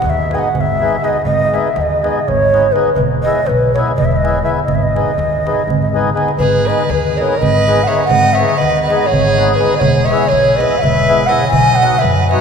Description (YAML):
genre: balkan folk, Balkan wedding band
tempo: 246 BPM (eighths)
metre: 7/8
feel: straight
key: G# minor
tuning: A4 = 438 Hz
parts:
  - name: breathy mellow low ney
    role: melody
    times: 0.0-12.4 s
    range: B4 to G#5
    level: -14 LUFS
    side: equal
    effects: none
  - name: upright bass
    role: bass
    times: 0.0-12.3 s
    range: E1 to F#2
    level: -19 LUFS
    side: left 1 dB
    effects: none
  - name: darbuka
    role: percussion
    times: 0.0-12.4 s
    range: none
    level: -20 LUFS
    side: right 3 dB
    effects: none
  - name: mellow accordion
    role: accompaniment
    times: 0.3-12.4 s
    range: F#3 to G#4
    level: -19 LUFS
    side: left 3 dB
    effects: none
  - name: clear violin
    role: second line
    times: 6.4-12.4 s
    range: G#4 to D#5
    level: -20 LUFS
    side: right 3 dB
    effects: none
room: wet cathedral reverb, RT60 6.7 s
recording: recorded in a church or concert hall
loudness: -11 LUFS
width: side -6 dB against mid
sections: 0.0-6.4 A section; 6.4-12.4 A section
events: drum fill 5.9-6.4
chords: 0.0 G#m; 3.0 E; 4.7 G#m; 9.8 E; 11.5 B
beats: 0.02 0.26 0.51 0.76 1.00 | 1.25 1.49 1.74 1.98 2.23 2.47 2.72 | 2.96 3.21 3.45 3.70 3.94 4.19 4.43 | 4.68 4.92 5.17 5.41 5.66 5.90 6.15 | 6.39 6.63 6.88 7.12 7.37 7.61 7.86 | 8.10 8.34 8.59 8.83 9.07 9.32 9.56 | 9.81 10.05 10.29 10.54 10.78 11.03 11.27 | 11.51 11.76 12.00 12.24